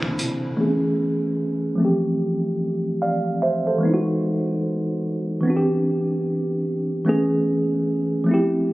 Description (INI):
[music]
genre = R&B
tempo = 74 BPM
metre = 4/4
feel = swing 59% on 16ths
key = unclear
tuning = A4 = 440 Hz
[part]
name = mellow tine electric piano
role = accompaniment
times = 0.0-8.7 s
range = B2 to F5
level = -20 LUFS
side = equal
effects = medium stereo tremolo, low-pass filter
[part]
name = hollow soft pad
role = sustained chords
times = 0.0-0.6 s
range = D3 to E4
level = -36 LUFS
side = left 1 dB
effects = ensemble chorus
[part]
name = hollow-body short-scale fingered electric bass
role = bass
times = 0.0-0.5 s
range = C2 to C3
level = -29 LUFS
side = equal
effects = none
[sound]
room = moderate plate reverb, RT60 3.8 s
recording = recorded on a phone in the room, club reverb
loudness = -20 LUFS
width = side -18 dB against mid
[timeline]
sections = 0.6-8.7 A section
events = filter sweep on tine electric piano 0.6-8.7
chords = 0.0 Cmaj9; 0.6 Amaj9; 1.8 Fmaj9; 3.8 Emaj9; 5.4 Cmaj9; 7.1 Amaj9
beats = | 0.58 1.39 2.20 3.01 | 3.82 4.63 5.44 6.25 | 7.07 7.88 8.69